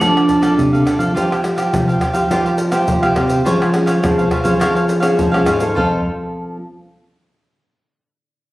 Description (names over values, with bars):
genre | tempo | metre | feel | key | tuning
samba and choro | 104 BPM | 4/4 | straight | F major | A4 = 438 Hz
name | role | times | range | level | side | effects
vibraphone with hard mallets | melody | 0.0-0.8 s | D4 | -15 LUFS | right 2 dB | none
cavaquinho | accompaniment | 0.0-6.0 s | D4 to F5 | -20 LUFS | right 1 dB | none
nylon-string guitar | accompaniment | 0.0-6.6 s | C3 to A4 | -20 LUFS | left 1 dB | none
nylon-string guitar | bass | 0.0-6.0 s | F2 to F3 | -18 LUFS | equal | none
tube shaker, surdo, pandeiro and tamborim | percussion | 0.0-5.9 s | none | -22 LUFS | left 1 dB | none
room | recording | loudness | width
moderate studio reverb, RT60 0.9 s | recorded on a phone in the room, studio reverb, compression | -13 LUFS | side -17 dB against mid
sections
0.0-1.2 A section; 1.2-5.8 B section; 5.8-8.1 C section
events
none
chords
0.0 F6; 1.2 Fsus2; 3.5 Dbmaj7/F; 5.8 F